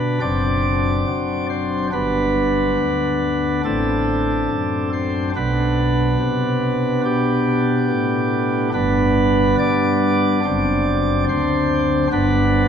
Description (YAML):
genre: classical, chorale-style piece for pipe organ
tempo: 71 BPM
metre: 4/4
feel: rubato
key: G major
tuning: A4 = 440 Hz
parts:
  - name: pipe organ, sparkling flutes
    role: solo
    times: 0.0-12.7 s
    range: F#1 to D5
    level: -16 LUFS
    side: equal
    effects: none
room: wet cathedral reverb, RT60 4.8 s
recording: none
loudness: -17 LUFS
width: side -8 dB against mid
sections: 0.0-12.7 A section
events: none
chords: 0.2 D7/F#; 1.9 G; 3.7 D7/A; 5.4 G/B; 8.7 G; 10.4 D7/F#; 12.1 G